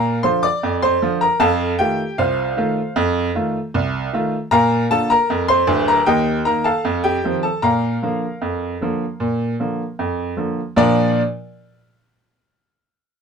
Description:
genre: ragtime piano.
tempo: 77 BPM.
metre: 2/4.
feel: straight.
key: Bb major.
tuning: A4 = 441 Hz.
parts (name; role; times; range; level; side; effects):
bright baby grand piano; solo; 0.0-11.2 s; D1 to D6; -16 LUFS; equal; none.
room: moderate booth ambience, RT60 0.2 s.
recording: none.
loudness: -16 LUFS.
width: side -6 dB against mid.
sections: 0.0-10.8 A section; 10.8-12.3 B section.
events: none.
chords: 0.0 Bb; 1.4 F7; 4.5 Bb; 6.1 Eb; 6.8 F7; 7.6 Bb.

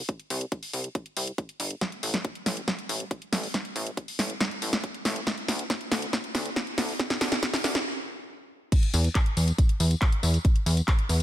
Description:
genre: uplifting trance.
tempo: 139 BPM.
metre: 4/4.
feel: straight.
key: unclear.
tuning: A4 = 440 Hz.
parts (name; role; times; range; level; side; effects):
plucky analog bass; bass; 0.0-11.2 s; G1 to E2; -27 LUFS; equal; sidechain pumping, high-pass filter.
electronic kick drum; drums; 0.1-11.0 s; none; -24 LUFS; equal; high-pass filter on kick.
house drum kit; drums; 0.1-11.2 s; crash cymbal, handclaps, hi-hat, snare drum, tambourine; -28 LUFS; equal; none.
room: light reverb.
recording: none.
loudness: -25 LUFS.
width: side -13 dB against mid.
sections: 0.0-8.7 A section; 8.7-11.2 B section.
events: build-up 0.0-8.7; drum fill 1.8-7.9; stop 7.9-8.7; drop 8.7-11.2.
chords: none.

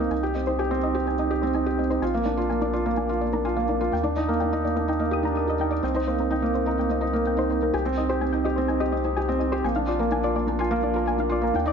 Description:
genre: electronica.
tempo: 126 BPM.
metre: 4/4.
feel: straight.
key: unclear.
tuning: A4 = 441 Hz.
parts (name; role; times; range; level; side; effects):
soft round pluck; arpeggios; 0.0-11.7 s; Bb4 to Eb6; -31 LUFS; left 4 dB; chorus, ping-pong delay.
felt-muted upright piano; riff; 0.0-11.7 s; Bb3 to D5; -24 LUFS; right 2 dB; ping-pong delay.
round analog bass; bass; 0.0-11.7 s; Bb1 to Eb2; -30 LUFS; left 1 dB; none.
room: moderate echo chamber reverb, RT60 1.3 s.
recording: nothing above 7.7 kHz.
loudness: -22 LUFS.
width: side -6 dB against mid.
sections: 0.0-11.7 A section.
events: filter sweep on synth arpeggio sound 0.0-11.7.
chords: 0.1 Abmaj7/C; 2.0 Bb7; 3.9 Ebmaj7; 5.8 Cm7; 7.7 Abmaj7/C; 9.6 Bb7.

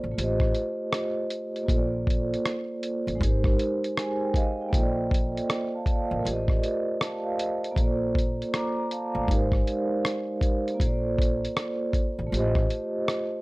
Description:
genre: lo-fi hip hop.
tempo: 79 BPM.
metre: 4/4.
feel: swing 63% on 16ths.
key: Bb major.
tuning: A4 = 441 Hz.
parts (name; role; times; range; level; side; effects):
vibraphone with soft mallets; accompaniment; 0.0-13.4 s; Ab3 to D6; -27 LUFS; right 1 dB; cassette tape, low-pass filter.
upright bass; bass; 0.0-12.6 s; Ab1 to Bb1; -30 LUFS; equal; none.
lo-fi sampler-style drum kit; drums; 0.2-13.3 s; hi-hat, kick drum, rim click; -26 LUFS; equal; none.
room: light reverb.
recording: none.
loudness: -24 LUFS.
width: side -22 dB against mid.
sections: 0.0-13.4 A section.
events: vibraphone fill 3.6-4.7.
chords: 0.2 F7/A; 1.7 Bbmaj7; 3.2 Abmaj7; 4.7 Bbmaj7; 9.3 Abmaj7; 10.8 Bbmaj7; 12.3 F7/A.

